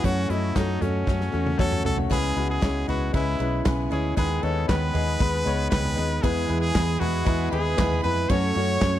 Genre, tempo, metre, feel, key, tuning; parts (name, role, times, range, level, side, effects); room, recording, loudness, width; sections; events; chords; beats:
piano-driven pop; 116 BPM; 4/4; straight; C# minor; A4 = 441 Hz
brilliant trumpet; melody; 0.0-9.0 s; C#4 to C#5; -29 LUFS; right 1 dB
clear concert grand piano; accompaniment; 0.0-9.0 s; C#3 to D#5; -28 LUFS; left 6 dB
picked steel-string acoustic guitar; riff; 0.0-9.0 s; C#3 to A4; -32 LUFS; right 8 dB
vintage muted fingered electric bass; bass; 0.0-9.0 s; B1 to F#2; -27 LUFS; equal
loose indie drum kit; drums; 0.0-8.9 s; crash cymbal, handclaps, hi-hat, kick drum, ride cymbal, snare drum, toms; -26 LUFS; right 1 dB
warm studio violin section; second line; 6.2-9.0 s; G#4 to C#6; -34 LUFS; right 3 dB
small room ambience; dry, close 1970s-style studio recording; -21 LUFS; side -12 dB against mid
0.0-2.1 A section; 2.1-9.0 B section
drum fill 1.1-2.1
0.0 F#m; 2.1 C#m7; 4.2 G#m/D#; 6.2 E; 8.3 F#m
| 0.04 0.56 1.07 1.59 | 2.11 2.62 3.14 3.65 | 4.17 4.69 5.21 5.72 | 6.24 6.75 7.27 7.79 | 8.30 8.82